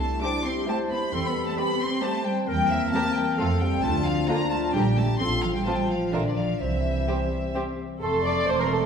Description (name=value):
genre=quick classical-period movement for symphony orchestra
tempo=132 BPM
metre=3/4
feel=straight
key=F major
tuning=A4 = 441 Hz
part: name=warm studio violin section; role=melody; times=0.0-8.9 s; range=D5 to D6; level=-29 LUFS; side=left 3 dB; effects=none
part: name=mellow clarinet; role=second line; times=0.0-8.9 s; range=A3 to D5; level=-32 LUFS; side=equal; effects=none
part: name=mellow French horn section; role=sustained chords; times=0.0-8.9 s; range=F3 to F4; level=-30 LUFS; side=left 2 dB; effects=none
part: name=dark studio double bass section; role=bass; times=0.0-8.9 s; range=E1 to F2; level=-29 LUFS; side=right 2 dB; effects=none
part: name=warm studio cello section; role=bass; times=0.0-8.9 s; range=E2 to D4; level=-31 LUFS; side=right 1 dB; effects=none
part: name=rich studio violin section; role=second line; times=0.2-8.9 s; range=C4 to D5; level=-34 LUFS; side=equal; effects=none
part: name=dark studio viola section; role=accompaniment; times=0.2-8.9 s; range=D3 to D5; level=-31 LUFS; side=right 2 dB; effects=none
part: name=clear oboe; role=second line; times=8.0-8.9 s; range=C6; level=-33 LUFS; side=right 4 dB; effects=none
part: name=small flute group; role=second line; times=8.0-8.8 s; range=A5 to D6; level=-34 LUFS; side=right 4 dB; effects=none
part: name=mellow bassoon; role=accompaniment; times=8.0-8.9 s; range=A3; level=-32 LUFS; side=right 2 dB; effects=none
room=wet scoring stage reverb, RT60 1.7 s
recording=recorded in a church or concert hall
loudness=-22 LUFS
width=side -7 dB against mid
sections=0.0-8.0 A section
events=none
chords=0.0 C; 1.1 C/E; 2.5 C7/E; 3.4 F; 3.8 Dm; 4.7 Gm/Bb; 5.2 F/A; 6.1 Bb; 6.6 C; 8.0 F